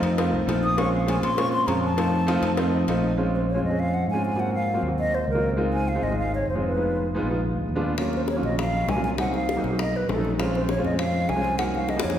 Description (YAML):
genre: Afro-Cuban jazz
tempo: 200 BPM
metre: 4/4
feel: straight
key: Bb minor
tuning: A4 = 440 Hz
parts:
  - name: warm baby grand piano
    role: accompaniment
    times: 0.0-12.2 s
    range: Gb3 to A5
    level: -26 LUFS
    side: equal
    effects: none
  - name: fingered electric bass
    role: bass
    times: 0.0-12.2 s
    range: F1 to Bb2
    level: -26 LUFS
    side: equal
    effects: none
  - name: cowbell and bongos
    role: percussion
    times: 0.0-3.0, 8.0-12.2 s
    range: none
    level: -31 LUFS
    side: left 3 dB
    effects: none
  - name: breathy mellow silver concert flute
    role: melody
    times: 0.6-12.2 s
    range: A4 to Eb6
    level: -28 LUFS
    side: equal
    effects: none
room: wet concert hall reverb, RT60 2.4 s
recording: heard from further back in the room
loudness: -22 LUFS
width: side -10 dB against mid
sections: 0.0-3.2 A section; 3.2-12.2 B section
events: flute solo 0.0-3.2; grand piano fill 2.3-3.2; drum fill 11.9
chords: 0.0 F7; 0.8 Bbm7; 2.0 F7; 3.2 Bbm9; 4.4 Ab13; 5.6 Dbmaj7; 6.8 Fm7b5; 7.4 Bb7b9; 8.0 Ebm9; 9.2 Cm7b5; 9.8 B9; 10.4 Bbm9; 11.6 Cm7b5